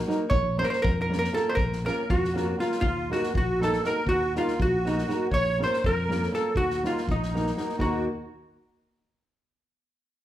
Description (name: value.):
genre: balkan folk, Balkan wedding band.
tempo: 240 BPM (eighths).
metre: 5/8.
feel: straight.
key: Eb dorian sharp4.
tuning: A4 = 440 Hz.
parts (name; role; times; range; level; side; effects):
vintage hollow-body jazz guitar; melody; 0.0-8.1 s; Eb4 to Db5; -28 LUFS; equal; none.
nylon-string guitar; accompaniment; 0.1-8.1 s; Bb3 to Bb4; -30 LUFS; equal; none.
unplugged drum kit; percussion; 0.1-8.1 s; kick drum, snare drum; -30 LUFS; equal; none.
fingered electric bass; bass; 0.3-8.1 s; Bb1 to F2; -31 LUFS; equal; none.
musette accordion; second line; 1.9-8.1 s; Eb4 to Db5; -31 LUFS; right 2 dB; none.
room: moderate large studio reverb, RT60 1.1 s.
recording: band playing live in one room.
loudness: -23 LUFS.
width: side -12 dB against mid.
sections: 0.0-7.8 A section; 7.8-9.0 B section.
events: speeding up 0.0-9.0.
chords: 0.3 Bbm; 2.8 Ebm; 5.3 Bbm; 6.6 Ebm.